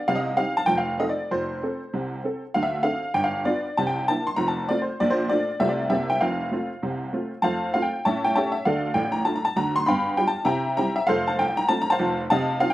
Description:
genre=jazz, stride piano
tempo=196 BPM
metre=4/4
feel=swing 63% on 8ths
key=F major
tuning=A4 = 444 Hz
part: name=honky-tonk upright piano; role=solo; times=0.0-12.7 s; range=F1 to C6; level=-22 LUFS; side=equal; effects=none
room=little or no reverb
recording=recorded outdoors, with no room sound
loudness=-22 LUFS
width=side -15 dB against mid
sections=0.0-7.4 A section; 7.4-12.7 B section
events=none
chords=0.1 Cm; 0.7 F7; 1.3 F; 2.5 Dm7; 3.1 G7; 3.8 C9; 4.4 F; 5.0 Bbmaj7; 5.6 F/C; 5.9 C7; 6.2 F; 8.0 A7; 8.7 Dm; 9.9 G7; 10.5 C7; 11.1 F

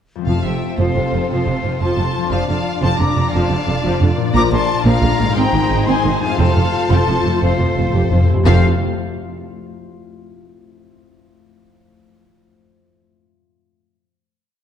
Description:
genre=cinematic, heroic adventure film score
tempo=117 BPM (dotted quarters)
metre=12/8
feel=straight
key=F major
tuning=A4 = 441 Hz
part: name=concert harp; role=arpeggios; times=0.2-8.7 s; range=F2 to F5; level=-24 LUFS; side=left 8 dB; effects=none
part: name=clear symphonic violin section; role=melody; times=0.3-8.7 s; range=C5 to Bb5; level=-24 LUFS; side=left 4 dB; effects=none
part: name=bright silver concert flute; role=second line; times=0.3-8.7 s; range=F5 to D6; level=-25 LUFS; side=left 2 dB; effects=none
part: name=clear symphonic violin section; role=second line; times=0.3-8.7 s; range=F4 to D5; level=-27 LUFS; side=left 3 dB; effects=none
part: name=warm symphonic viola section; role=accompaniment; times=0.3-8.7 s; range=C3 to G4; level=-22 LUFS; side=right 1 dB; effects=none
part: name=clear symphonic double bass section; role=bass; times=0.3-8.7 s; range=F1 to Bb1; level=-21 LUFS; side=right 3 dB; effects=none
part: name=rich symphonic cello section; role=bass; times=0.3-8.7 s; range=F2 to Bb2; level=-20 LUFS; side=right 2 dB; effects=none
part: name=timpani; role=percussion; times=0.3-0.7, 6.4-8.6 s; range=F2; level=-19 LUFS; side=equal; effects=none
room=wet scoring stage reverb, RT60 1.9 s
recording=dark, warm production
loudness=-14 LUFS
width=side -8 dB against mid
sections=0.3-8.5 theme; 8.5-10.5 final chord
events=timpani fill 7.4-8.5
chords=0.3 F; 2.3 Dm/F; 4.4 Bb; 5.4 Ab; 6.4 F; 8.5 F5

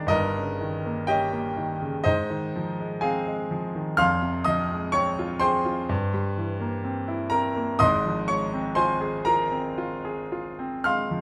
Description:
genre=classical, romantic nocturne for solo piano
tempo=62 BPM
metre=4/4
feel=rubato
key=F minor from 4.0 s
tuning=A4 = 443 Hz
part: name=clear grand piano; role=solo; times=0.0-11.2 s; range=F1 to F6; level=-26 LUFS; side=equal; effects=none
room=moderate large studio reverb, RT60 1.2 s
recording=none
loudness=-26 LUFS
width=mono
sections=0.0-11.2 A section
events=none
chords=0.1 Eb7/G; 2.1 Ab6; 4.0 Fm; 5.9 C7/G; 7.8 Fm/Ab

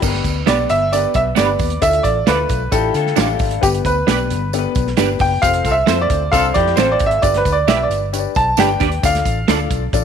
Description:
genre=uptempo 1960s-style soul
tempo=133 BPM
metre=4/4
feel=straight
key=G mixolydian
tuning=A4 = 440 Hz
part: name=warm upright piano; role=accompaniment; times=0.0-10.0 s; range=A3 to D5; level=-23 LUFS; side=left 12 dB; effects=none
part: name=vintage muted fingered electric bass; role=bass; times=0.0-10.0 s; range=F1 to D3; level=-22 LUFS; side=equal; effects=none
part: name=natural country drum kit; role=drums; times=0.0-10.0 s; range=crash cymbal, hi-hat, kick drum, snare drum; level=-20 LUFS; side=right 3 dB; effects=none
part: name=tambourine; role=percussion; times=0.0-10.0 s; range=none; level=-32 LUFS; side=right 18 dB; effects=none
part: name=clear grand piano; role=melody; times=0.5-9.7 s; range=G4 to A5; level=-17 LUFS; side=right 1 dB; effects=slapback echo
part: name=electric guitar through a small old amp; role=stabs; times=0.5-9.6 s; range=B3 to D5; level=-22 LUFS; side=right 13 dB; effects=ensemble chorus
part: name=electric guitar through a small old amp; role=riff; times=2.7-3.6, 6.3-7.2 s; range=D4 to A4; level=-23 LUFS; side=left 15 dB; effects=none
part: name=mellow horn section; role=second line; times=5.7-6.5 s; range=C4 to A4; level=-21 LUFS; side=equal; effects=none
room=light reverb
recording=1960s-style stereo with parts hard left and right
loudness=-14 LUFS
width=side -7 dB against mid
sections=0.0-10.0 A section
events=grand piano solo 0.0-10.0; band accent 5.4-7.2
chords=0.0 G; 1.8 Dm; 3.6 G; 5.4 F; 7.2 G; 9.0 Dm

